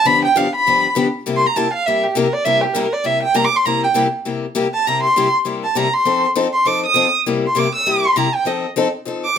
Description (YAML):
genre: jazz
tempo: 200 BPM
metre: 4/4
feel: swing 59% on 8ths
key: C mixolydian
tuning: A4 = 440 Hz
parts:
  - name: dark violin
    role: melody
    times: 0.0-9.4 s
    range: G4 to E6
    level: -16 LUFS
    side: right 2 dB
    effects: none
  - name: picked steel-string acoustic guitar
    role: accompaniment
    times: 0.1-9.4 s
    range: G2 to A4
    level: -20 LUFS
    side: left 5 dB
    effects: none
room: moderate studio reverb, RT60 0.6 s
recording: none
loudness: -14 LUFS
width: side -8 dB against mid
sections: 0.0-3.7 A section; 3.7-9.4 A section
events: violin solo 0.0-9.4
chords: 0.1 G7; 1.3 C7; 6.1 F7; 7.3 C7; 8.5 F7